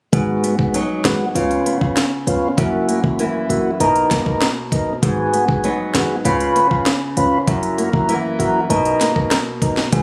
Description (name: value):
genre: dancehall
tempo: 98 BPM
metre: 4/4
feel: straight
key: G# minor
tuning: A4 = 440 Hz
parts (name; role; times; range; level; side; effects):
- mellow tonewheel organ; accompaniment; 0.1-10.0 s; G#3 to B4; -21 LUFS; equal; slow rotary speaker, sidechain pumping
- flamenco guitar; arpeggios; 0.1-10.0 s; F#2 to E4; -24 LUFS; equal; digital delay
- warm 808-style bass; bass; 0.1-10.0 s; F#1 to C#2; -27 LUFS; equal; none
- island pop drum kit; drums; 0.1-10.0 s; hi-hat, kick drum, rim click, snare drum; -23 LUFS; equal; none
room: light reverb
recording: recorded on a phone in the room, studio ambience, compression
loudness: -18 LUFS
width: mono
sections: 0.1-10.0 A section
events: none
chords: 0.1 G#m7; 1.4 C#7; 2.6 F#7; 3.8 Bmaj7; 5.0 G#m7; 6.3 C#7; 7.5 F#7; 8.7 Bmaj7